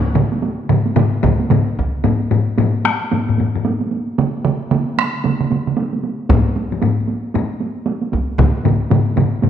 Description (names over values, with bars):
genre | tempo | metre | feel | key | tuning
japanese traditional, taiko drum ensemble | 113 BPM | 4/4 | swing 60% on 16ths | none | none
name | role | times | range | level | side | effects
solo taiko drums | percussion | 0.2-9.5 s | none | -19 LUFS | right 6 dB | none
taiko ensemble | percussion | 0.2-9.5 s | none | -18 LUFS | left 5 dB | none
solo taiko drums | percussion | 0.3-9.5 s | none | -21 LUFS | right 4 dB | none
taiko ensemble | percussion | 1.2-1.9, 6.3-8.5 s | none | -19 LUFS | equal | none
room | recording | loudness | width
wet recital hall reverb, RT60 1.9 s | none | -15 LUFS | side -9 dB against mid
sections
0.0-2.0 A section; 2.0-9.5 B section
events
speeding up 0.0-9.5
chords
none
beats
0.43 0.97 1.51 | 2.05 2.58 3.12 3.65 | 4.19 4.72 5.25 5.78 | 6.30 6.83 7.35 7.87 | 8.39 8.91 9.43